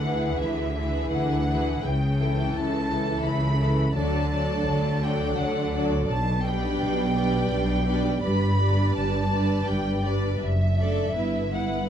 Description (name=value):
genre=classical, slow romantic movement for string orchestra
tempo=83 BPM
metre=3/4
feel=rubato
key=D major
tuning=A4 = 438 Hz
part: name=warm studio violin section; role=melody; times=0.0-11.9 s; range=D5 to B5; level=-31 LUFS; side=equal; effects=none
part: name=rich studio violin section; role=second line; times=0.0-11.9 s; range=E4 to D5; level=-32 LUFS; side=left 1 dB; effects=none
part: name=warm studio viola section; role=accompaniment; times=0.0-11.9 s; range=E3 to E4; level=-29 LUFS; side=equal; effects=none
part: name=dark studio double bass section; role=bass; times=0.0-11.8 s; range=F#1 to D2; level=-28 LUFS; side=equal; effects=none
part: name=warm studio cello section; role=bass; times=0.0-11.8 s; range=F#2 to D3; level=-27 LUFS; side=equal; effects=none
room=moderate studio reverb, RT60 0.9 s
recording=dark, warm production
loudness=-22 LUFS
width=side -9 dB against mid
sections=0.0-11.9 A section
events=none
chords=0.0 E7/D; 1.8 A7/C#; 4.0 D; 6.1 G/B; 8.2 G; 10.4 D/F#; 11.2 Em/G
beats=0.40 1.12 | 1.83 2.55 3.25 | 3.96 4.68 5.39 | 6.10 6.82 7.52 | 8.23 8.96 9.68 | 10.42 11.16